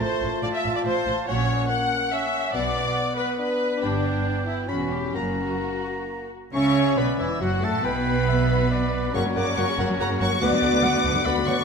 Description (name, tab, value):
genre	quick classical-period movement for symphony orchestra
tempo	140 BPM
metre	3/4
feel	rubato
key	B minor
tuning	A4 = 442 Hz
part	rich studio violin section	melody	0.0-11.6 s	E5 to D6	-30 LUFS	left 3 dB	none
part	clear oboe	second line	0.0-11.6 s	E4 to B5	-32 LUFS	equal	none
part	rich studio violin section	second line	0.0-11.6 s	D4 to F#5	-34 LUFS	left 3 dB	none
part	warm clarinet	second line	0.0-11.6 s	B3 to G5	-32 LUFS	left 2 dB	none
part	mellow bassoon	accompaniment	0.0-11.6 s	E3 to F4	-32 LUFS	equal	none
part	rich studio viola section	accompaniment	0.0-11.6 s	C#3 to F#5	-28 LUFS	left 1 dB	none
part	mellow French horn section	sustained chords	0.0-11.6 s	E3 to F#4	-29 LUFS	left 1 dB	none
part	clear studio cello section	bass	0.0-11.6 s	D2 to C#3	-29 LUFS	right 2 dB	none
part	rich studio double bass section	bass	0.0-11.5 s	E1 to D2	-30 LUFS	right 4 dB	none
part	mellow flute section	second line	6.5-11.5 s	E4 to D5	-32 LUFS	right 1 dB	none
room	moderate scoring stage reverb, RT60 1.6 s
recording	none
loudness	-21 LUFS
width	side -5 dB against mid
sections	0.0-6.5 A section; 6.5-11.6 B section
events	none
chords	0.0 F/A; 1.3 F#/A#; 2.5 Bm; 3.8 G; 4.7 C#m7b5/E; 5.1 F#; 6.5 Bm; 7.8 Em/B; 9.1 F#; 10.4 Bm/D